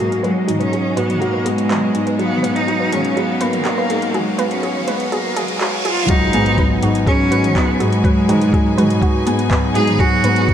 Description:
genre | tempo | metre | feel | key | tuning
piano and strings electronica | 123 BPM | 4/4 | straight | G# dorian | A4 = 441 Hz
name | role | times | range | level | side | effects
rich cello | melody | 0.0-10.5 s | F#3 to G#4 | -19 LUFS | right 1 dB | none
clear studio string section | sustained chords | 0.0-10.5 s | B2 to G#5 | -28 LUFS | left 1 dB | sidechain pumping, low-pass filter
warbly dusty pluck | arpeggios | 0.0-10.5 s | F#4 to B4 | -27 LUFS | right 4 dB | chorus, cassette tape, sidechain pumping, ping-pong delay
felt-muted upright piano | riff | 0.0-10.5 s | F#3 to F#4 | -20 LUFS | left 1 dB | none
dark studio cello section | bass | 0.0-10.4 s | G#2 | -22 LUFS | equal | sidechain pumping
deep house drum kit | drums | 0.0-10.5 s | handclaps, hi-hat, toms | -27 LUFS | right 1 dB | overdrive, studio ambience
riser, reverse cymbal and impact | sound effects | 1.5-8.0 s | none | -29 LUFS | right 1 dB | none
electronic kick drum | drums | 6.1-10.5 s | none | -17 LUFS | equal | studio ambience
room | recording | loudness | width
moderate huge ambient reverb, RT60 4.8 s | dark, warm production, high-pass filter | -14 LUFS | side -9 dB against mid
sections
0.0-6.1 A section; 6.1-10.5 B section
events
build-up 0.0-6.1; filter sweep on synth arpeggio sound 0.0-6.1; filter sweep 0.0-6.1; riser 1.5-6.1; reverse cymbal 5.1-6.1; drop 6.1-10.5; impact 6.1-8.0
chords
0.0 G#m7

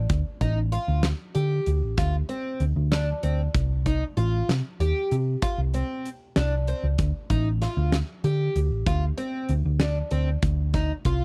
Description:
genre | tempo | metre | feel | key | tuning
progressive instrumental, band music in an uneven meter | 192 BPM (eighths) | 11/8 | straight | D phrygian | A4 = 440 Hz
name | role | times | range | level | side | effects
hollow-body short-scale picked electric bass | bass | 0.0-11.2 s | A1 to D3 | -26 LUFS | equal | none
huge arena drum kit | drums | 0.1-11.2 s | hi-hat, kick drum, snare drum | -30 LUFS | equal | none
picked twelve-string acoustic guitar | arpeggios | 0.4-11.2 s | C4 to G4 | -32 LUFS | equal | none
room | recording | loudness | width
little or no reverb | dry, close 1970s-style studio recording | -25 LUFS | mono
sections
0.0-11.2 A section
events
none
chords
0.0 Dm7; 3.5 N.C.; 7.0 Dm7; 10.4 Dm

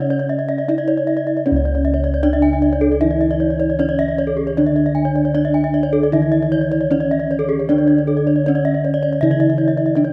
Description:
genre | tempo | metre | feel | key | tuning
Balinese gamelan | 77 BPM | 4/4 | straight | C# pelog | A4 = 441 Hz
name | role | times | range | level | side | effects
gamelan-type bronze metallophone | melody | 0.0-10.1 s | C#4 to E4-50c | -21 LUFS | equal | none
gamelan-type bronze metallophone | arpeggios | 0.0-10.1 s | G#4-45c to G#5-45c | -25 LUFS | equal | none
gamelan-type bossed gongs | bass | 0.0-10.1 s | C#2 to D4 | -24 LUFS | equal | none
gamelan-type bronze metallophone | arpeggios | 0.2-10.0 s | C#5 to G#5-45c | -26 LUFS | equal | none
gamelan-type bronze metallophone | accompaniment | 1.5-10.1 s | C#3 to E3-50c | -26 LUFS | equal | none
room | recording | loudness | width
moderate concert hall reverb, RT60 1.9 s | none | -17 LUFS | mono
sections
0.0-10.1 A section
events
none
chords
none

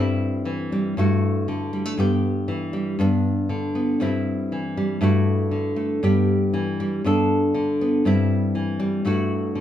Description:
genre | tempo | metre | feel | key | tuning
highlife | 119 BPM | 4/4 | straight | G major | A4 = 439 Hz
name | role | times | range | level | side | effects
nylon-string guitar | solo | 0.0-9.6 s | G2 to A4 | -20 LUFS | equal | none
room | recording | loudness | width
moderate large studio reverb, RT60 0.9 s | band playing live in one room | -20 LUFS | side -10 dB against mid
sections
0.0-9.6 A section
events
none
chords
0.0 C/G; 1.0 Dadd9/G; 2.0 Em/G; 3.0 G; 4.0 C/G; 5.0 Dadd9/G; 6.0 Em/G; 7.0 Gadd9; 8.0 C/G; 9.1 Dadd9/G (rootless)

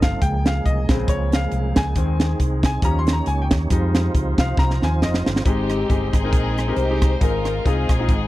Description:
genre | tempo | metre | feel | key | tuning
uptempo gospel | 137 BPM | 4/4 | swing 56% on 8ths | Ab major | A4 = 441 Hz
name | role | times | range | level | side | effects
bright concert grand piano | accompaniment | 0.0-8.3 s | Ab2 to C6 | -26 LUFS | left 4 dB | none
tonewheel organ | sustained chords | 0.0-8.3 s | Db3 to C6 | -28 LUFS | right 4 dB | chorus vibrato, stopped rotary speaker
fingered electric bass | bass | 0.0-8.3 s | F1 to F2 | -22 LUFS | equal | none
crisp fusion drum kit | drums | 0.0-8.2 s | hi-hat, kick drum, rim click, snare drum | -20 LUFS | equal | none
warm chamber string section | melody | 5.5-8.3 s | C4 to C5 | -25 LUFS | left 2 dB | none
room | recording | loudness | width
little or no reverb | dry, close 1970s-style studio recording | -17 LUFS | side -16 dB against mid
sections
0.0-5.5 A section; 5.5-8.3 B section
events
grand piano solo 0.0-5.5; drum fill 4.6-5.5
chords
0.2 Bbm7; 2.0 Ab/Eb; 2.8 Eb7; 3.7 Fm7; 5.5 Abmaj7; 7.2 Fm7/Ab

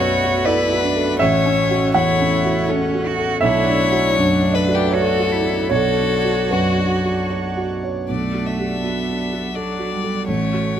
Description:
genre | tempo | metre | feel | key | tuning
neoclassical piano and strings | 75-83 BPM | 3/4 | rubato | B minor | A4 = 440 Hz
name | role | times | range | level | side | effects
clear violin | melody | 0.0-10.8 s | F#4 to E5 | -22 LUFS | left 6 dB | none
clear cello | second line | 0.0-10.8 s | F#3 to F#4 | -24 LUFS | right 5 dB | none
dark baby grand piano | accompaniment | 0.0-10.8 s | A1 to F#5 | -19 LUFS | right 2 dB | none
hand-pumped harmonium | sustained chords | 0.0-10.8 s | A3 to C#5 | -27 LUFS | equal | none
room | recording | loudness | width
little or no reverb | close, detailed microphones | -16 LUFS | side -9 dB against mid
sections
0.0-8.1 A section; 8.1-10.8 B section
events
none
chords
0.0 Bm7; 1.2 A6; 3.4 Bm7; 5.7 Bmadd9; 8.1 Bm7; 10.3 A6

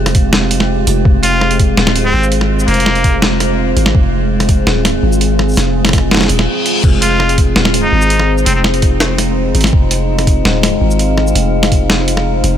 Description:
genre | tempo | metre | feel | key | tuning
half-time drum and bass | 166 BPM | 4/4 | half-time | F minor | A4 = 440 Hz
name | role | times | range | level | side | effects
deep dark ambient pad | sustained chords | 0.0-12.6 s | Ab3 to F5 | -17 LUFS | equal | chorus, built-in reverb, sidechain pumping
long sustained 808-style bass | bass | 0.0-12.6 s | Eb1 to Ab1 | -15 LUFS | equal | none
metallic inharmonic drone | texture | 0.0-12.6 s | Ab3 to Eb4 | -22 LUFS | left 1 dB | chorus, built-in reverb
boom bap sampler-style drum kit | drums | 0.1-12.5 s | crash cymbal, hi-hat, shaker, snare drum | -16 LUFS | equal | none
electronic kick drum | drums | 0.1-11.8 s | none | -11 LUFS | equal | none
trumpet with straight mute | melody | 1.2-3.2, 7.0-8.6 s | Bb3 to F4 | -18 LUFS | equal | ping-pong delay
reverse cymbal | sound effects | 6.3-6.8 s | none | -21 LUFS | left 4 dB | none
room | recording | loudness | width
digital ambience | none | -10 LUFS | side -10 dB against mid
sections
0.0-12.6 A section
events
reverse cymbal 6.3-6.8; break 6.5-6.8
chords
0.0 Fm

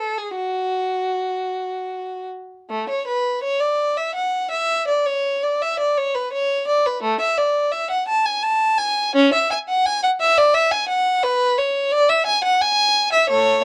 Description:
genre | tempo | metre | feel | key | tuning
classical, baroque-style suite movement for unaccompanied violin | 75-88 BPM | 3/4 | rubato | unclear | A4 = 440 Hz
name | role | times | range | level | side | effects
warm violin | solo | 0.0-13.6 s | A3 to A5 | -20 LUFS | equal | none
room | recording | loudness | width
light reverb | dark, warm production | -20 LUFS | mono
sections
0.0-2.7 A section; 2.7-13.6 A section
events
none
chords
none

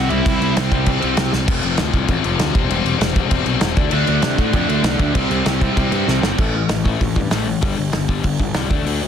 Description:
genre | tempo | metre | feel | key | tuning
punk rock | 196 BPM | 4/4 | straight | A minor | A4 = 440 Hz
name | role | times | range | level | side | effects
nasal lead guitar with a parked wah | melody | 0.0-0.5 s | E4 to E5 | -26 LUFS | equal | overdrive, ping-pong delay
biting overdriven guitar | riff | 0.0-9.1 s | F2 to D4 | -22 LUFS | left 11 dB | none
biting overdriven guitar | riff | 0.0-1.3, 3.9-6.4 s | C3 to D4 | -22 LUFS | right 16 dB | none
fuzz picked electric bass | bass | 0.0-9.1 s | E1 to C3 | -22 LUFS | right 1 dB | overdrive
loose indie drum kit | drums | 0.1-8.9 s | crash cymbal, hi-hat, kick drum, snare drum | -19 LUFS | equal | none
room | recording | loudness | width
little or no reverb | dense, heavily limited modern master | -16 LUFS | side -8 dB against mid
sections
0.0-1.5 A section; 1.5-6.4 B section; 6.4-9.1 C section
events
drum fill 1.3, 6.1-6.4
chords
0.0 C; 1.5 F5; 2.5 C/E; 3.8 D5; 5.2 C5; 6.4 A5; 7.6 G5

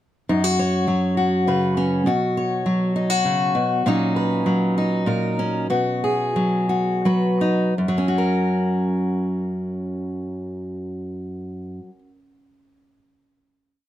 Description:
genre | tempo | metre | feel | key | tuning
acoustic folk duo or small band | 80-101 BPM | 3/4 | straight | F# major | A4 = 440 Hz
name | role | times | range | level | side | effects
fingerpicked steel-string acoustic guitar | solo | 0.3-12.2 s | F#2 to C#5 | -19 LUFS | equal | none
room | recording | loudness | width
moderate studio reverb, RT60 0.6 s | none | -19 LUFS | side -12 dB against mid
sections
0.3-7.8 interlude; 7.8-12.3 final chord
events
slowing down 3.8-7.8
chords
0.3 F#5; 2.1 Bsus2; 3.8 D#m7/A#; 5.7 B; 7.8 F#

